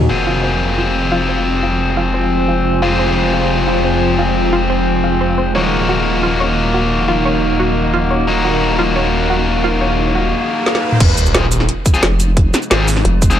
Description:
dark technical drum and bass; 176 BPM; 4/4; straight; F phrygian; A4 = 440 Hz
metallic inharmonic drone; sustained chords; 0.0-13.4 s; C3 to Gb4; -23 LUFS; left 1 dB; chorus, built-in reverb, sidechain pumping
vowel-sweep wobble bass; bass; 0.0-0.1, 12.0-13.4 s; F1; -14 LUFS; equal; chorus, tube saturation
drum and bass drum kit; drums; 0.0-0.1, 10.7-13.4 s; crash cymbal, hi-hat, shaker, snare drum, toms; -17 LUFS; equal
deep dark ambient pad; texture; 0.0-10.3 s; Eb4 to Bb5; -23 LUFS; right 1 dB; chorus, built-in reverb, sidechain pumping
distorted electric guitar; stabs; 0.1-13.4 s; Bb3 to Ab4; -17 LUFS; left 3 dB; overdrive, digital delay
phased detuned saw bass; bass; 0.1-13.0 s; Eb1 to Ab1; -19 LUFS; equal; phaser, tube saturation
analog pluck; arpeggios; 0.3-10.2 s; F4 to Db5; -23 LUFS; right 1 dB; chorus, sidechain pumping, digital delay
riser and sub drop; sound effects; 9.6-12.4 s; -22 LUFS; right 1 dB
electronic kick drum; drums; 11.0-13.3 s; -12 LUFS; equal
light reverb, digital ambience; -12 LUFS; side -10 dB against mid
0.1-11.0 A section; 11.0-13.4 B section
filter sweep on synth arpeggio sound 0.1-11.0; riser 9.6-11.0; drum fill 10.7-11.0; drop 11.0-13.4; impact 11.0-12.4
0.1 Fm; 5.5 Ebm; 11.0 Fm

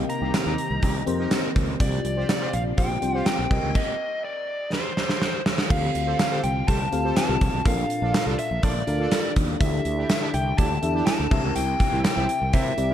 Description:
1980s-style pop; 123 BPM; 4/4; straight; C minor; A4 = 442 Hz
FM electric piano with soft pad layer; accompaniment; 0.0-12.9 s; Bb2 to F5; -29 LUFS; left 2 dB; chorus, shimmer reverb
ensemble organ-string; sustained chords; 0.0-3.8 s; Eb3 to G4; -34 LUFS; equal
fretless electric bass; bass; 0.0-12.9 s; Bb1 to C3; -27 LUFS; equal
biting lead guitar; melody; 0.1-12.9 s; C5 to Bb5; -28 LUFS; left 1 dB; overdrive, shimmer reverb
gated 80s drum kit; drums; 0.1-12.9 s; crash cymbal, hi-hat, kick drum, snare drum, tambourine; -24 LUFS; equal
analog synth brass; stabs; 0.2-12.9 s; C4 to C5; -33 LUFS; right 2 dB; chorus, shimmer reverb
moderate lush hall reverb, RT60 2.1 s; dark, warm production; -21 LUFS; side -10 dB against mid
0.0-5.7 A section; 5.7-12.9 A section
drum fill 4.7-5.7
0.0 Cm7; 1.8 G7sus4; 3.5 Cm7; 5.7 Fadd9; 7.7 Bbmaj7; 9.6 A7sus4; 11.3 C7

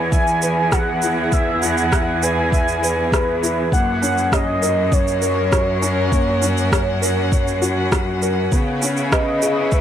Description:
piano and strings electronica; 100 BPM; 4/4; straight; A4 = 443 Hz
warm velvety synth lead; melody; 0.0-9.8 s; B4 to G#5; -22 LUFS; equal; chorus
dark string quartet; sustained chords; 0.0-9.8 s; C#3 to F#5; -25 LUFS; right 3 dB; sidechain pumping
felt-muted upright piano; riff; 0.0-9.8 s; A#3 to E5; -23 LUFS; left 1 dB; digital delay
bright studio cello section; bass; 0.0-9.8 s; E2 to C#3; -23 LUFS; left 1 dB; sidechain pumping
electronic kick drum; drums; 0.1-9.8 s; -20 LUFS; equal
electronic shaker and rim click; drums; 0.1-9.8 s; -24 LUFS; right 2 dB
light reverb, studio ambience; -16 LUFS; side -10 dB against mid
0.0-9.8 A section
0.0 E; 3.7 F#; 8.5 C#m7

